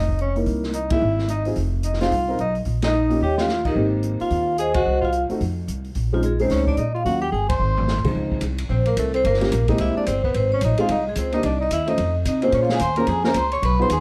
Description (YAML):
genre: jazz, small-group swing and bop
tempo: 219 BPM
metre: 4/4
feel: swing 62% on 8ths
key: Bb minor, Db major from 8.2 s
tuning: A4 = 440 Hz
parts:
  - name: vibraphone with medium hard mallets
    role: melody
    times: 0.0-14.0 s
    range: Eb4 to Db6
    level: -26 LUFS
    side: equal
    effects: none
  - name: warm tenor saxophone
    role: second line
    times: 0.0-14.0 s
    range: F3 to Db5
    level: -31 LUFS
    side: equal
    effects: none
  - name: upright bass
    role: bass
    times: 0.0-14.0 s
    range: F1 to C3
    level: -26 LUFS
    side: equal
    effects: none
  - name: open jazz drum kit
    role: drums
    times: 0.1-14.0 s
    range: crash cymbal, hi-hat, kick drum, ride cymbal, snare drum, toms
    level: -31 LUFS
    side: equal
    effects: none
  - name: warm concert grand piano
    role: accompaniment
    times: 0.4-13.9 s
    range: Db2 to C5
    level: -27 LUFS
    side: equal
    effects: none
room: small room ambience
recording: none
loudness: -21 LUFS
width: mono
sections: 0.0-8.2 A section; 8.2-14.0 B section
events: band accent 0.9, 2.8, 4.7, 7.5; drum fill 3.2, 7.3-7.9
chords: 0.5 C7alt; 1.6 F7(no3); 2.7 Bbm; 3.2 Eb7; 3.8 Abmaj7; 4.9 Cdim; 5.4 F5; 6.0 Bbm11; 7.1 Ebm7; 7.6 Ab; 8.2 Dbmaj9; 9.2 Gm7b5; 9.8 C7b13; 10.3 Fm7 (rootless); 11.4 Cm; 12.0 F5; 12.5 Bbm7